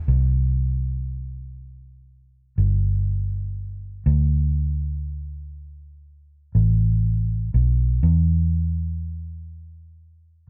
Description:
pop; 60 BPM; 4/4; straight; C major; A4 = 438 Hz
vintage muted fingered electric bass; bass; 0.0-10.5 s; G1 to E2; -23 LUFS; equal
little or no reverb; -22 LUFS; mono
0.1-10.5 A section

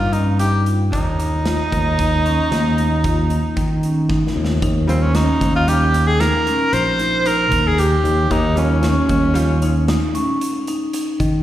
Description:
progressive instrumental, band music in an uneven meter; 114 BPM; 7/4; straight; Eb mixolydian; A4 = 440 Hz
clear tenor saxophone; melody; 0.0-10.1 s; C4 to C5; -20 LUFS; right 1 dB; slapback echo
fingered electric bass; bass; 0.0-11.4 s; Bb1 to Eb3; -18 LUFS; equal
marimba with medium mallets; arpeggios; 0.1-11.2 s; Bb3 to G4; -23 LUFS; left 2 dB; slapback echo
big rock drum kit; drums; 0.1-11.3 s; hi-hat, kick drum, snare drum; -25 LUFS; equal
hollow-body jazz guitar; accompaniment; 4.9-9.7 s; G3 to F4; -26 LUFS; right 2 dB; slapback echo
light reverb; live gig heard through the venue's PA, recital hall reverb; -15 LUFS; side -13 dB against mid
0.0-4.6 A section; 4.6-11.4 B section
drum fill 4.1-4.6
0.0 Cm/Eb (rootless); 4.6 Eb7

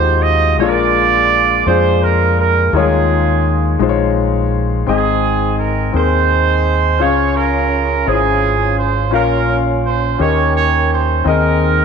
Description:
slow gospel; 56 BPM (dotted quarters); 6/8; straight; Ab major; A4 = 440 Hz
warm horn section; melody; 0.0-11.8 s; C4 to Eb5; -15 LUFS; right 8 dB
warm baby grand piano; accompaniment; 0.0-11.8 s; Ab2 to F5; -17 LUFS; left 10 dB
deep dub fingered electric bass; bass; 0.0-11.8 s; Ab1 to F2; -17 LUFS; equal
moderate echo chamber reverb, RT60 1.8 s, small room ambience; 1960s-style stereo with parts hard left and right; -12 LUFS; side -6 dB against mid
0.0-4.9 A section; 4.9-11.8 B section
0.0 Ab6; 0.6 Bb7; 2.7 Eb9sus4; 4.9 Ab; 7.0 Db; 9.1 Bbm; 10.2 Eb7; 11.3 Ab/Eb

